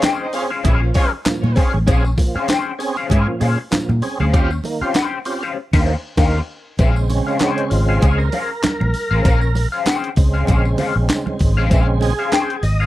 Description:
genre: funk.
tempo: 98 BPM.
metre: 4/4.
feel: swing 56% on 16ths.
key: Bb dorian.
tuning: A4 = 439 Hz.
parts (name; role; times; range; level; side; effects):
electric guitar at the edge of break-up; accompaniment; 0.0-12.9 s; Db4 to G5; -22 LUFS; left 5 dB; wah, phaser.
overdriven tonewheel organ; stabs; 0.0-12.9 s; Bb2 to Eb5; -23 LUFS; right 3 dB; chorus vibrato, slow rotary speaker.
breakbeat sampler-style drum kit; drums; 0.0-12.8 s; crash cymbal, handclaps, hi-hat, kick drum, snare drum; -18 LUFS; equal; none.
congas; percussion; 0.0-12.5 s; none; -27 LUFS; right 5 dB; none.
tambourine; percussion; 0.0-12.9 s; none; -39 LUFS; left 2 dB; none.
warm horn section; second line; 0.2-1.1 s; Ab3 to F5; -28 LUFS; right 1 dB; tape echo.
vintage muted fingered electric bass; bass; 0.7-12.9 s; Ab1 to Bb2; -17 LUFS; equal; none.
room: digital ambience.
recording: dry, close 1970s-style studio recording.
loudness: -15 LUFS.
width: side -15 dB against mid.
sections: 0.0-6.8 A section; 6.8-12.9 B section.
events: band accent 5.6-6.8; tonewheel organ solo 6.8-12.9.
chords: 0.0 Bbm9; 4.3 Eb13; 6.8 Bbm9.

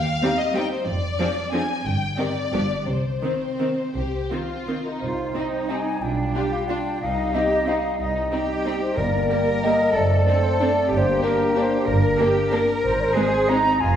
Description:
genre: classical.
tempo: 160-198 BPM.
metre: 3/4.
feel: rubato.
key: C minor.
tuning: A4 = 440 Hz.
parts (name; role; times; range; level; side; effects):
warm symphonic violin section; melody; 0.0-13.6 s; Eb4 to Ab5; -29 LUFS; left 3 dB; none.
rich studio double bass section; bass; 0.0-14.0 s; F1 to Eb2; -26 LUFS; right 2 dB; none.
rich symphonic cello section; bass; 0.0-14.0 s; Eb2 to Bb4; -27 LUFS; right 1 dB; none.
warm symphonic violin section; second line; 0.2-13.6 s; C4 to Ab4; -31 LUFS; left 2 dB; none.
bright symphonic viola section; accompaniment; 0.2-13.6 s; Eb3 to D4; -28 LUFS; right 2 dB; none.
wooden flute; second line; 4.8-14.0 s; Bb4 to Bb5; -23 LUFS; equal; none.
mellow French horn section; sustained chords; 5.0-13.6 s; G3 to F4; -28 LUFS; left 3 dB; none.
timpani; percussion; 9.0-9.4 s; G2; -32 LUFS; left 1 dB; none.
room: wet recital hall reverb, RT60 1.4 s.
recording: heard from further back in the room.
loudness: -20 LUFS.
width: side -9 dB against mid.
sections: 0.0-5.0 A section; 5.0-14.0 A section.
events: none.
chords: 0.0 Cm/Eb; 0.9 Dm7b5/F; 1.9 N.C.; 2.5 G5; 2.9 Cm; 6.0 G7/B; 7.0 Cm; 9.0 Gm; 9.9 D7/F#; 10.9 Gm; 12.8 Ab.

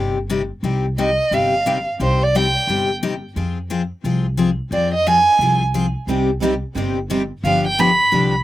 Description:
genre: acoustic string swing (jazz manouche).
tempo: 176 BPM.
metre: 4/4.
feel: swing 62% on 8ths.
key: C harmonic minor.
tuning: A4 = 439 Hz.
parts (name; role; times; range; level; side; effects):
picked steel-string acoustic guitar; accompaniment; 0.0-8.3 s; C3 to Ab4; -21 LUFS; left 4 dB; none.
upright bass; bass; 0.0-8.4 s; G1 to F2; -23 LUFS; equal; none.
warm violin; melody; 1.0-8.3 s; C5 to B5; -16 LUFS; right 2 dB; slapback echo.
picked steel-string acoustic guitar; accompaniment; 6.1-8.3 s; C3 to G4; -23 LUFS; right 6 dB; none.
room: little or no reverb.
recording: recorded outdoors, with no room sound.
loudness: -16 LUFS.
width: side -14 dB against mid.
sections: 0.0-8.4 A section.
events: violin solo 0.0-8.4.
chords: 0.0 Cm; 3.4 Fm; 6.1 Cm; 7.4 G7.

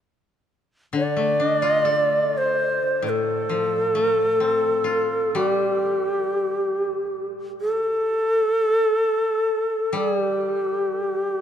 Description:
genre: japanese traditional, Japanese chamber music.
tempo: free time.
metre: none.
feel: none.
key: G suspended pentatonic.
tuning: A4 = 441 Hz.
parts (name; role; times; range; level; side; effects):
koto; accompaniment; 0.9-11.4 s; A2 to A4; -27 LUFS; left 3 dB; none.
breathy bright long shakuhachi; melody; 1.0-11.4 s; G4 to D5; -20 LUFS; equal; none.
room: wet cathedral reverb, RT60 5.7 s.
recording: dark, warm production.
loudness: -20 LUFS.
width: side -9 dB against mid.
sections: 0.0-11.4 A section.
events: slowing down 7.3-11.4.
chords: none.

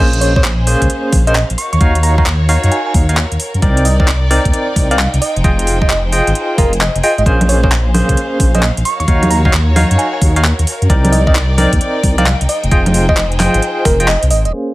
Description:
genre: UK garage, two-step garage.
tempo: 132 BPM.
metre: 4/4.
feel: swing 65% on 16ths.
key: Bb minor.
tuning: A4 = 440 Hz.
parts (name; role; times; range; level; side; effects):
warm symphonic violin section; sustained chords; 0.0-14.7 s; Db4 to G5; -24 LUFS; left 1 dB; sidechain pumping, low-pass filter.
barky tine electric piano; stabs; 0.0-14.7 s; Bb3 to G5; -17 LUFS; equal; medium tremolo, low-pass filter.
dark detuned saw bass; bass; 0.0-14.5 s; Eb1 to Gb2; -14 LUFS; equal; none.
garage drum kit; drums; 0.1-14.5 s; congas, finger snaps, handclaps, hi-hat; -18 LUFS; equal; none.
bell-like FM electric piano; melody; 0.2-14.5 s; Bb4 to Db6; -20 LUFS; right 1 dB; chorus, tremolo, dub echo.
electronic kick drum; drums; 0.4-14.0 s; none; -14 LUFS; equal; none.
room: light reverb.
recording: vinyl crackle, low-pass filter.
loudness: -10 LUFS.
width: side -18 dB against mid.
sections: 0.0-14.5 A section.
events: kick drops out 14.1-14.5; band accent 14.1.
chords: 0.0 Bbm9; 1.6 Ebm9; 3.6 Cm9; 5.2 Fm9; 7.3 Bbm9; 8.9 Ebm9; 10.9 Cm9; 12.5 Fm9.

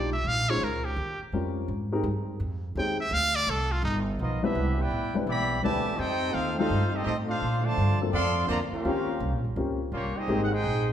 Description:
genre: jazz, big band swing.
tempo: 168 BPM.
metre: 4/4.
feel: swing 65% on 8ths.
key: unclear.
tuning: A4 = 440 Hz.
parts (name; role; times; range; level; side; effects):
bright trumpet; melody; 0.0-4.0 s; D#4 to G5; -28 LUFS; right 1 dB; none.
dark upright piano; accompaniment; 0.0-10.5 s; G3 to C5; -31 LUFS; left 2 dB; none.
upright bass; bass; 0.0-10.9 s; G1 to Bb2; -30 LUFS; equal; none.
clear trumpet section; melody; 4.2-10.9 s; Bb3 to C6; -30 LUFS; equal; none.
mellow trombone section; second line; 4.2-10.9 s; B2 to Ab4; -33 LUFS; right 1 dB; none.
room: wet recital hall reverb, RT60 1.6 s.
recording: recorded in a church or concert hall.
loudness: -25 LUFS.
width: side -10 dB against mid.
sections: 0.0-4.6 A section; 4.6-10.9 B section.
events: trumpet solo 0.0-4.6.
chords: 0.3 Bbm11; 1.0 Eb13; 1.7 Abmaj7; 3.1 F6; 3.8 G7alt; 4.6 Cmaj9; 6.0 F9; 7.4 Bbmaj9; 8.9 Eb13; 10.3 Abmaj7.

